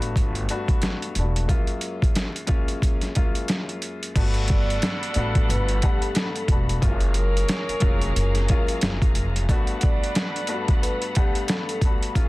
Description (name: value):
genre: hip hop, boom-bap hip-hop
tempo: 90 BPM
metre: 4/4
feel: swing 58% on 16ths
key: unclear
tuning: A4 = 440 Hz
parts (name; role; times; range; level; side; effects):
- warm upright piano; accompaniment; 0.0-12.3 s; F#2 to F#5; -30 LUFS; left 3 dB; cassette tape, high-pass filter, low-pass filter
- upright bass; bass; 0.0-9.5 s; E1 to A1; -24 LUFS; equal; none
- boom bap sampler-style drum kit; drums; 0.0-12.3 s; crash cymbal, hi-hat, kick drum, snare drum; -22 LUFS; equal; none
- mellow saxophone section; stabs; 4.1-12.3 s; D4 to F#5; -35 LUFS; right 2 dB; high-pass filter, low-pass filter, tape echo
- muted studio string section; sustained chords; 4.2-12.3 s; G#4 to B5; -36 LUFS; left 3 dB; high-pass filter, low-pass filter
- vibraphone with medium mallets; melody; 4.5-11.8 s; G4 to D5; -32 LUFS; equal; high-pass filter, low-pass filter, tape echo
room: little or no reverb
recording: dense, heavily limited modern master, vinyl crackle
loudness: -20 LUFS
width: side -20 dB against mid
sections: 0.0-4.2 A section; 4.2-12.3 B section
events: none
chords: 0.0 Gmaj9; 1.5 F#maj9; 4.2 Gmaj9; 6.8 F#maj9; 9.5 Gmaj9